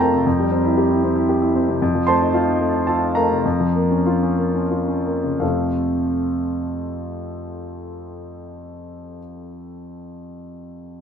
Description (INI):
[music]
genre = classical, virtuoso piano study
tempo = 82-118 BPM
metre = 3/4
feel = rubato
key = F major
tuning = A4 = 440 Hz
[part]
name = warm grand piano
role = solo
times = 0.0-11.0 s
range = F2 to C6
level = -19 LUFS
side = equal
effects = none
[sound]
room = light reverb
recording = none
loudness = -17 LUFS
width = side -7 dB against mid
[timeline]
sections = 0.0-5.4 A section; 5.4-9.7 B section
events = slowing down 1.0-5.4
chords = 0.3 C7/F; 1.8 F7; 3.4 Bbm/F; 5.4 F